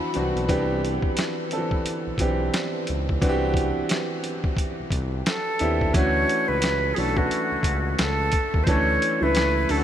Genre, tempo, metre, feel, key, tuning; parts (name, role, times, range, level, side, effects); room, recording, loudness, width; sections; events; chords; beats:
R&B, neo-soul; 88 BPM; 4/4; swing 57% on 16ths; A4 = 439 Hz
breathy concert flute; melody; 0.0-0.1, 5.3-9.8 s; F#4 to B5; -26 LUFS; equal; ping-pong delay
warm upright piano; accompaniment; 0.0-9.8 s; D3 to A4; -26 LUFS; right 1 dB
boom bap sampler-style drum kit; drums; 0.1-9.8 s; hi-hat, kick drum, snare drum; -27 LUFS; equal
smooth synth bass; bass; 0.2-9.8 s; B1 to Eb2; -27 LUFS; equal
moderate huge ambient reverb, RT60 8.0 s; dreamy mix soaked in reverb; -21 LUFS; side -10 dB against mid
0.5-5.9 A section; 5.9-9.8 B section
0.5 Cmaj9; 5.9 Dmaj9
| 0.48 1.17 1.85 2.53 | 3.21 3.89 4.58 5.26 | 5.94 6.62 7.30 7.99 | 8.67 9.35